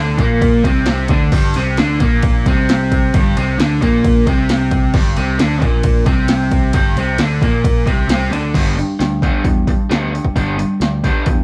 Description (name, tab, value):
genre	garage rock duo or trio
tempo	133 BPM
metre	4/4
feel	straight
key	unclear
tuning	A4 = 440 Hz
part	crunchy overdriven guitar	riff	0.0-11.4 s	G2 to D4	-20 LUFS	equal	none
part	picked electric bass	bass	0.0-11.4 s	G1 to E2	-21 LUFS	equal	overdrive
part	punchy analog drum machine	drums	0.2-11.4 s	crash cymbal, hi-hat, kick drum, ride cymbal, snare drum	-18 LUFS	equal	none
room	moderate studio reverb, RT60 0.8 s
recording	band playing live in one room, cassette tape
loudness	-15 LUFS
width	mono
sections	0.0-8.5 A section; 8.5-11.4 B section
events	break 8.3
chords	0.0 G5; 8.5 G